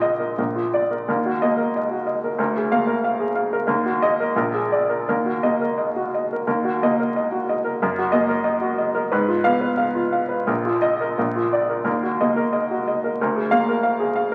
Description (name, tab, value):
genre	classical, romantic character piece for solo piano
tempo	82-96 BPM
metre	2/4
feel	rubato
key	Eb minor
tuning	A4 = 440 Hz
part	clear upright piano	solo	0.0-14.3 s	Bb1 to F5	-22 LUFS	equal	none
room	wet recital hall reverb, RT60 1.4 s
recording	very old 78 rpm record, vinyl crackle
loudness	-22 LUFS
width	mono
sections	0.0-6.5 A section; 6.5-14.3 A section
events	none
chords	0.4 Bb; 1.1 Ebm; 2.4 Bb7/D; 3.7 Ebm; 4.3 Bb7; 5.0 Ebm; 7.8 Ebm/Gb; 9.1 Fdim/Ab; 10.5 Bbsus4; 11.2 Bb; 11.9 Ebm; 13.2 Bb7/D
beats	0.37 | 1.07 1.74 | 2.38 3.01 | 3.65 4.32 | 5.04 5.76 | 6.46 7.15 | 7.81 8.45 | 9.11 9.77 | 10.46 11.17 | 11.86 12.53 | 13.19 13.83